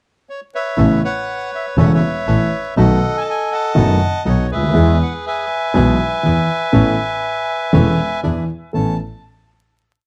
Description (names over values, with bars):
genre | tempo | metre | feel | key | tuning
tango | 121 BPM | 4/4 | rubato | A major | A4 = 440 Hz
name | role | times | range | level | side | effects
bandoneon | melody | 0.3-9.0 s | G#4 to A5 | -22 LUFS | equal | tape echo
warm grand piano | accompaniment | 0.8-8.9 s | E1 to A4 | -18 LUFS | equal | none
bandoneon | stabs | 0.8-8.9 s | B3 to A4 | -29 LUFS | equal | none
clear double bass | bass | 0.8-9.0 s | E1 to E2 | -20 LUFS | equal | none
room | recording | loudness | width
light reverb | dry, close 1970s-style studio recording, vinyl crackle | -17 LUFS | mono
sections
0.0-0.8 pickup bar; 0.8-8.7 A section; 8.7-10.1 final chord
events
none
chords
0.0 Bsus24; 0.8 Aadd9; 2.8 B7; 4.8 E; 6.7 Aadd9; 8.2 E7; 8.7 Aadd9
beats
0.28 | 0.78 1.28 1.78 2.27 | 2.77 3.27 3.76 4.26 | 4.76 5.25 5.75 6.24 | 6.74 7.23 7.73 8.23 | 8.74